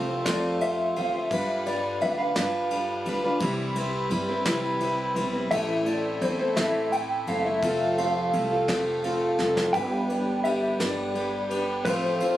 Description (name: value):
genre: acoustic folk duo or small band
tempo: 57 BPM (dotted quarters)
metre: 6/8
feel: straight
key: G mixolydian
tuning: A4 = 440 Hz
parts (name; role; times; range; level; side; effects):
- picked plugged-in steel-string acoustic guitar; accompaniment; 0.0-12.4 s; A2 to C5; -28 LUFS; left 1 dB; none
- pedal harmonium; sustained chords; 0.0-12.4 s; C3 to B4; -31 LUFS; right 2 dB; none
- upright bass; bass; 0.0-12.4 s; F1 to G2; -33 LUFS; equal; none
- mellow electric guitar; melody; 0.3-12.4 s; C5 to G5; -28 LUFS; equal; tremolo
- soft brush drum kit; drums; 0.3-12.4 s; kick drum, ride cymbal, snare drum; -34 LUFS; equal; none
room: light reverb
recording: recorded on a phone in the room, studio ambience, compression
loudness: -24 LUFS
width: side -13 dB against mid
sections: 0.0-9.7 A section; 9.7-12.4 B section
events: clean electric guitar solo 0.0-9.7; drum fill 9.4-9.7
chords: 0.0 F; 1.3 G7; 3.4 Cmaj7; 5.5 Am; 7.6 F; 9.7 G; 11.9 F/A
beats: 0.26 | 1.31 2.36 | 3.41 4.47 | 5.52 6.57 | 7.63 8.69 | 9.74 10.80 | 11.85